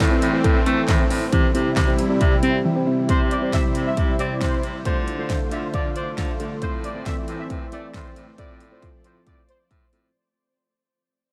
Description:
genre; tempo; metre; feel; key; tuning
synth-pop; 136 BPM; 4/4; straight; C major; A4 = 440 Hz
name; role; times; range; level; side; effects
mellow tine electric piano; accompaniment; 0.0-10.1 s; A3 to G5; -29 LUFS; equal; low-pass filter
warm analog pad; sustained chords; 0.0-10.1 s; C3 to F4; -30 LUFS; equal; chorus, low-pass filter
soft round pluck; arpeggios; 0.0-3.0 s; E3 to E5; -29 LUFS; equal; chorus, delay
warm baritone saxophone; bass; 0.0-10.1 s; A2 to D4; -30 LUFS; equal; none
pop drum kit; drums; 0.0-10.0 s; handclaps, hi-hat, kick drum, snare drum; -25 LUFS; equal; none
analog synth brass; second line; 3.1-9.6 s; C5 to E5; -33 LUFS; equal; chorus, delay
room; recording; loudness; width
moderate huge ambient reverb, RT60 7.5 s; dreamy mix soaked in reverb; -21 LUFS; mono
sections
0.0-3.1 A section; 3.1-10.1 B section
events
tine electric piano fill 2.4-3.1; break 2.6-3.1; fade-out 3.1-10.1; filter sweep 3.1-10.1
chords
0.0 Am; 1.3 C; 4.9 Dm; 6.6 Am; 8.4 F/A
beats
0.00 0.44 0.88 | 1.32 1.77 2.21 2.65 | 3.09 3.53 3.97 4.41 | 4.85 5.30 5.74 6.18 | 6.62 7.06 7.50 7.94 | 8.38 8.82 9.27 9.71

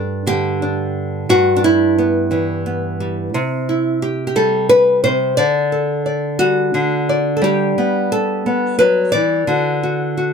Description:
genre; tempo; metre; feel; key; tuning
folk, solo fingerstyle acoustic guitar; 88 BPM; 3/4; rubato; G major; A4 = 438 Hz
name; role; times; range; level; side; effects
nylon-string guitar; solo; 0.0-10.3 s; G2 to D5; -14 LUFS; equal; none
room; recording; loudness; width
light reverb; close, detailed microphones; -14 LUFS; side -6 dB against mid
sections
0.0-10.3 A section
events
none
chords
0.0 G5; 1.3 Em/G; 3.3 C; 5.4 Dsus4; 6.7 N.C.; 7.4 G; 9.5 D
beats
0.61 | 1.29 1.97 2.65 | 3.33 4.00 4.68 | 5.36 6.04 6.73 | 7.42 8.11 8.80 | 9.49 10.17

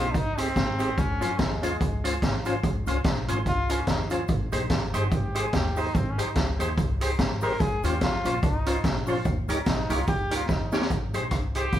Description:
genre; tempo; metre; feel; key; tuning
ska; 145 BPM; 4/4; swing 57% on 8ths; Ab major; A4 = 445 Hz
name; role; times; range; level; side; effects
brilliant trombone; melody; 0.0-10.7 s; Ab3 to Bb4; -31 LUFS; equal; none
semi-hollow electric guitar; accompaniment; 0.0-11.7 s; Db4 to C5; -34 LUFS; right 3 dB; slapback echo
tonewheel organ; stabs; 0.0-11.7 s; C4 to Db5; -32 LUFS; left 2 dB; chorus vibrato, slow rotary speaker
upright bass; bass; 0.0-11.8 s; G1 to F2; -30 LUFS; equal; none
street-band drum kit; drums; 0.1-11.8 s; hi-hat, kick drum, rim click, snare drum; -26 LUFS; equal; slapback echo
cabasa; percussion; 0.1-11.8 s; none; -51 LUFS; left 4 dB; none
warm trumpet; melody; 11.6-11.8 s; G4; -29 LUFS; equal; none
room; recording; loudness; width
moderate large studio reverb, RT60 1.0 s; band playing live in one room; -23 LUFS; side -11 dB against mid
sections
0.0-10.9 A section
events
trombone solo 0.0-10.9; drum fill 10.5-10.9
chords
0.0 Abmaj7; 1.0 Dbmaj7; 4.3 Abmaj7; 7.6 Dbmaj7; 9.3 Eb7; 10.9 Abmaj7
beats
0.14 0.56 | 0.98 1.39 1.81 2.22 | 2.64 3.05 3.46 3.88 | 4.29 4.71 5.12 5.54 | 5.95 6.36 6.78 7.19 | 7.60 8.02 8.43 8.84 | 9.26 9.67 10.08 10.49 | 10.91 11.32 11.73

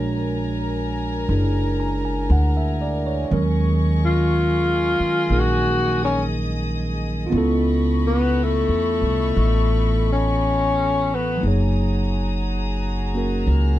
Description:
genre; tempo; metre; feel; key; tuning
jazz ballad; 59 BPM; 4/4; swing 68% on 8ths; Eb minor; A4 = 441 Hz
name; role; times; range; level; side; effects
tine electric piano; accompaniment; 0.0-13.8 s; Eb3 to Bb5; -24 LUFS; right 2 dB; none
warm studio string section; sustained chords; 0.0-13.8 s; Gb4 to F6; -31 LUFS; left 3 dB; none
upright bass; bass; 0.0-13.8 s; F#1 to E2; -22 LUFS; equal; none
breathy tenor saxophone; melody; 4.0-11.4 s; A3 to Gb4; -21 LUFS; left 2 dB; none
room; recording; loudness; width
light reverb; dark, warm production; -18 LUFS; side -14 dB against mid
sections
0.0-13.8 A section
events
tenor saxophone solo 0.0-13.8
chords
0.0 Bb7alt; 3.3 Ebm11; 7.3 Db7alt; 11.4 Gb69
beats
0.26 1.27 2.29 | 3.30 4.30 5.31 6.32 | 7.33 8.34 9.36 10.40 | 11.43 12.45 13.47

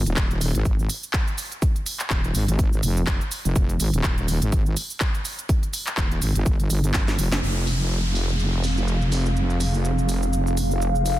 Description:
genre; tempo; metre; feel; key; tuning
bass house; 124 BPM; 4/4; swing 57% on 16ths; F minor; A4 = 441 Hz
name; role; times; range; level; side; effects
wobble bass; bass; 0.0-11.2 s; Eb1 to Ab1; -22 LUFS; equal; chorus, overdrive, sidechain pumping
house drum kit; drums; 0.1-11.2 s; handclaps, hi-hat, shaker, snare drum; -28 LUFS; right 1 dB; low-pass filter on hats, studio reverb, low-pass filter on perc, soft clipping on snare, low-pass filter on snare
electronic kick drum; drums; 0.2-7.1 s; none; -22 LUFS; equal; studio reverb
downlifter; sound effects; 7.4-11.2 s; none; -31 LUFS; equal; none
warbly tape-like pad; texture; 8.2-11.2 s; C4 to F5; -28 LUFS; right 1 dB; chorus, built-in reverb, sidechain pumping
room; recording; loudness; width
little or no reverb; dense, heavily limited modern master; -20 LUFS; side -14 dB against mid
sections
0.0-7.4 A section; 7.4-11.2 B section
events
drum fill 6.9-7.4; band accent 7.3; filter sweep on drum 7.4-11.2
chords
0.0 Fm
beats
0.17 0.65 1.14 | 1.62 2.11 2.59 3.07 | 3.56 4.04 4.53 5.01 | 5.49 5.98 6.46 6.94 | 7.43 7.91 8.40 8.88 | 9.36 9.85 10.33 10.81

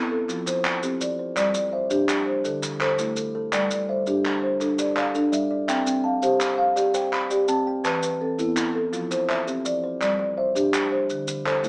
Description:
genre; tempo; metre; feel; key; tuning
southern african traditional, mbira-style interlocking cycle; 111 BPM (dotted quarters); 12/8; straight; G mixolydian; A4 = 443 Hz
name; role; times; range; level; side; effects
kalimba; arpeggios; 0.0-11.7 s; D3 to A5; -28 LUFS; equal; none
marimba with soft mallets; arpeggios; 0.0-11.7 s; D3 to B5; -23 LUFS; equal; none
group handclap; percussion; 0.3-11.7 s; none; -28 LUFS; equal; none
maracas; percussion; 0.3-11.7 s; none; -33 LUFS; right 1 dB; none
room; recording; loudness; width
light reverb; small speaker sound; -21 LUFS; side -33 dB against mid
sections
0.0-11.7 A section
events
none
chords
0.3 F; 1.4 G5; 2.5 D5; 3.5 G; 5.7 C; 7.8 Em; 8.9 F; 10.0 G5; 11.1 D5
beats
0.29 0.83 | 1.37 1.91 2.45 2.99 | 3.53 4.07 4.61 5.15 | 5.69 6.23 6.77 7.31 | 7.85 8.39 8.93 9.47 | 10.01 10.55 11.10 11.64

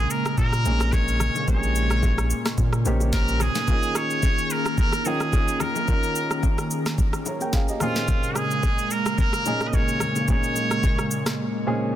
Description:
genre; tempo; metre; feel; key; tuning
amapiano; 109 BPM; 4/4; swing 55% on 16ths; Bb dorian; A4 = 439 Hz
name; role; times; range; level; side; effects
trumpet with straight mute; melody; 0.0-11.3 s; F4 to Eb5; -27 LUFS; right 1 dB; tape echo
warm baby grand piano; accompaniment; 0.0-12.0 s; Bb2 to Bb5; -28 LUFS; equal; none
hollow soft pad; sustained chords; 0.0-12.0 s; Db3 to Ab4; -30 LUFS; right 1 dB; ensemble chorus
round analog bass; bass; 0.0-3.5 s; Bb1 to Bb2; -23 LUFS; equal; none
smooth R&B drum kit; drums; 0.1-11.4 s; kick drum, rim click, shaker, snare drum; -24 LUFS; equal; soft clipping on snare
congas and bongos; percussion; 0.4-11.0 s; none; -34 LUFS; left 7 dB; none
room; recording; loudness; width
studio ambience; dense, heavily limited modern master; -20 LUFS; side -12 dB against mid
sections
0.0-12.0 A section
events
break 11.4-12.0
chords
0.0 Bbm11; 3.7 Eb7sus4; 7.8 Bbm11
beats
0.38 0.93 | 1.48 2.03 2.58 3.13 | 3.68 4.23 4.78 5.33 | 5.88 6.43 6.98 7.53 | 8.08 8.63 9.18 9.73 | 10.29 10.84 11.38 11.94

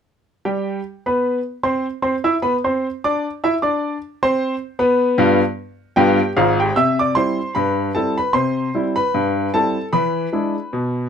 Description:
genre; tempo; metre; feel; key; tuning
ragtime piano; 76 BPM; 2/4; swing 55% on 16ths; C major; A4 = 440 Hz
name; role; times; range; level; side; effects
clear upright piano; solo; 0.5-11.1 s; Ab1 to E6; -16 LUFS; equal; none
room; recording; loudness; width
light reverb; close, detailed microphones; -17 LUFS; side -7 dB against mid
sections
0.5-6.8 A section; 6.8-11.1 B section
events
none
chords
0.5 C/G; 3.6 G7; 6.8 C; 9.9 E7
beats
| 0.45 1.24 | 2.03 2.82 | 3.60 4.39 | 5.18 5.97 | 6.77 7.56 | 8.35 9.14 | 9.92 10.71

